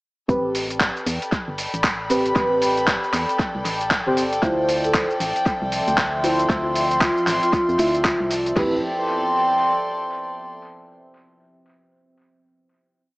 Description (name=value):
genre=deep house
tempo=116 BPM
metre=4/4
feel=swing 61% on 16ths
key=A minor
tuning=A4 = 439 Hz
part: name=deep mellow chord stab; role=stabs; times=0.3-8.8 s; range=C4 to E5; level=-24 LUFS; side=equal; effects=chorus, phaser, sidechain pumping, tape echo
part: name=organ-like FM bass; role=bass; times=0.3-8.8 s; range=G1 to F2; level=-31 LUFS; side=equal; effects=sidechain pumping
part: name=deep house drum kit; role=drums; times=0.3-8.7 s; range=crash cymbal, kick drum, toms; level=-24 LUFS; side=equal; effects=none
part: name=dusty soul sampler-style drum kit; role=drums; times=0.3-8.5 s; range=handclaps, hi-hat, shaker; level=-24 LUFS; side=equal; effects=overdrive, tape echo
part: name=warm chamber string section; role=texture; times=0.3-10.6 s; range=A4 to C6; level=-24 LUFS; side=equal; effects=sidechain pumping
part: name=vibraphone with soft mallets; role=melody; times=4.4-8.8 s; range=E4 to C5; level=-24 LUFS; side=equal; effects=tape echo
part: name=deep dark ambient pad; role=sustained chords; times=5.2-8.8 s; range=F3 to E5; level=-32 LUFS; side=right 1 dB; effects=chorus, built-in reverb, sidechain pumping
room=moderate plate reverb, RT60 1.9 s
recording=echo-heavy mix, cassette tape, small speaker sound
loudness=-18 LUFS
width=side -24 dB against mid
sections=0.3-8.6 drop; 8.6-10.6 final chord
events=drop 0.3-8.6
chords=0.3 Am7; 4.4 Dm7; 8.6 Am7